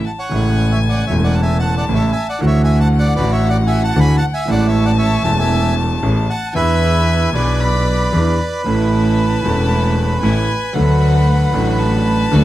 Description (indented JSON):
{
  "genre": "tango",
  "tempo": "115 BPM",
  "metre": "4/4",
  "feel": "rubato",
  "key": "A major",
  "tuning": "A4 = 440 Hz",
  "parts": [
    { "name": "warm violin", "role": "second line", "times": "0.0-12.4 s", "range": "F#5 to B5", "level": "-24 LUFS", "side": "left 5 dB", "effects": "none" },
    { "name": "bandoneon", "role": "melody", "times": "0.1-12.4 s", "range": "B4 to B5", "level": "-21 LUFS", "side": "right 2 dB", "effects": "none" },
    { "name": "warm concert grand piano", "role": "accompaniment", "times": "0.3-12.4 s", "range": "E1 to A4", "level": "-19 LUFS", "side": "right 1 dB", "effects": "none" },
    { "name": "clear double bass", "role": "bass", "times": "0.3-12.4 s", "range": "E1 to E2", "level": "-16 LUFS", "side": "equal", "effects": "none" },
    { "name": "rich studio string section", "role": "stabs", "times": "8.7-12.4 s", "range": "A3 to F#4", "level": "-25 LUFS", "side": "right 1 dB", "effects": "none" }
  ],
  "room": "light reverb",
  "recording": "close, detailed microphones, vinyl crackle",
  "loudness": "-13 LUFS",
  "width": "side -14 dB against mid",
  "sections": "0.3-12.4 A section",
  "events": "none",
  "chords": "0.3 Amaj7; 2.4 Dadd9; 4.5 Amaj7; 6.6 E7; 8.7 A; 10.8 D"
}